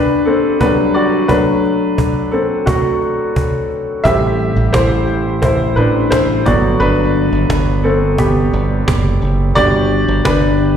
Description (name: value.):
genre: piano-driven pop.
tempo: 87 BPM.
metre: 4/4.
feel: straight.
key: G major.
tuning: A4 = 441 Hz.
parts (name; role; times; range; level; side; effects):
clear upright piano; accompaniment; 0.0-10.8 s; F#3 to E5; -14 LUFS; left 1 dB; plate reverb, slapback echo.
cajon; drums; 0.3-10.7 s; none; -19 LUFS; right 1 dB; slapback echo.
modern bright fingered electric bass; bass; 4.0-10.8 s; F#1 to A1; -15 LUFS; right 1 dB; none.
room: light reverb.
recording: live gig heard through the venue's PA, recital hall reverb.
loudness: -12 LUFS.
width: side -8 dB against mid.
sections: 0.0-10.8 A section.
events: upright piano solo 0.0-10.8.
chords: 0.0 Gmaj9; 1.3 Bm7; 4.0 Am7; 6.5 Gmaj7.